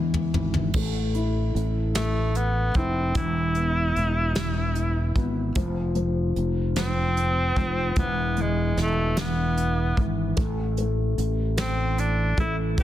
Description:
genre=six-eight pop ballad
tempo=50 BPM (dotted quarters)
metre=6/8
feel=straight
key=A harmonic minor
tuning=A4 = 437 Hz
part: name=warm upright piano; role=accompaniment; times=0.0-12.8 s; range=E3 to E4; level=-29 LUFS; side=left 2 dB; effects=none
part: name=sustaining fretless electric bass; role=bass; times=0.0-12.8 s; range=E1 to E2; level=-25 LUFS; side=equal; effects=lush chorus
part: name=soft brush drum kit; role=drums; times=0.1-12.8 s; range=crash cymbal, hi-hat, kick drum, snare drum, toms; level=-28 LUFS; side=equal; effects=none
part: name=bright tenor saxophone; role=melody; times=2.0-12.8 s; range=G#3 to E4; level=-27 LUFS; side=equal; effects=none
room=light reverb, studio reverb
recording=dense, heavily limited modern master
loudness=-22 LUFS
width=side -12 dB against mid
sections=0.7-12.8 A section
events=drum fill 0.0-0.7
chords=0.0 E; 0.7 A5; 3.2 E; 5.6 F5; 8.0 E; 10.4 N.C.

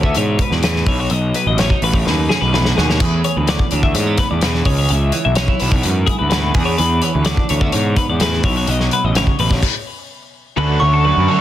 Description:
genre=math rock and midwest emo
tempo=127 BPM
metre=4/4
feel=straight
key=unclear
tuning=A4 = 441 Hz
part: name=clean electric guitar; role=accompaniment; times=0.0-11.4 s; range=E2 to A4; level=-23 LUFS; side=right 6 dB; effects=analog chorus
part: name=twelve-string electric guitar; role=arpeggios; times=0.0-11.4 s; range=G#4 to E5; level=-21 LUFS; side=left 6 dB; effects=plate reverb, tape echo
part: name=fuzz picked electric bass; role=bass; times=0.0-11.3 s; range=A1 to G#2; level=-18 LUFS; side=equal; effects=overdrive
part: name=loose indie drum kit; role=drums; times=0.0-9.7 s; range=crash cymbal, hi-hat, kick drum, snare drum, splash cymbal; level=-18 LUFS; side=equal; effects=none
part: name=crunchy overdriven guitar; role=riff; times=10.6-11.4 s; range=D3 to A4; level=-21 LUFS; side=right 2 dB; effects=none
part: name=glockenspiel with soft plastic mallets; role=melody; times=10.8-11.2 s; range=C#6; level=-16 LUFS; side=equal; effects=tape echo
room=light reverb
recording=dense, heavily limited modern master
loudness=-14 LUFS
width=side -12 dB against mid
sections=0.0-10.6 A section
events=drum fill 2.1-3.0; stop 9.6-10.6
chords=0.0 E7; 0.9 B7; 3.0 E7; 4.7 C#m7; 6.6 E7; 8.4 B7; 9.6 N.C.; 10.6 Dmaj7

